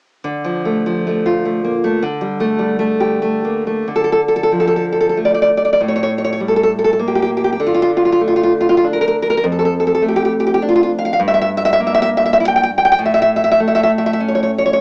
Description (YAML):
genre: romantic piece for solo classical guitar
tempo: 87-107 BPM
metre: 3/4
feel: rubato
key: D minor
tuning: A4 = 440 Hz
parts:
  - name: nylon-string guitar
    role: solo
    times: 0.2-14.8 s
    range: F2 to G5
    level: -15 LUFS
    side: equal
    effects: cassette tape
room: wet small room reverb, RT60 0.5 s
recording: home recording on cassette, small speaker sound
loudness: -15 LUFS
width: mono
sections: 0.2-3.9 A section; 3.9-14.8 B section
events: none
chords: 0.2 Dm; 2.0 Gmadd9/D; 3.9 Dm; 5.8 A7b9; 7.6 D5; 9.4 Dm/F; 11.2 Edim/G; 13.0 A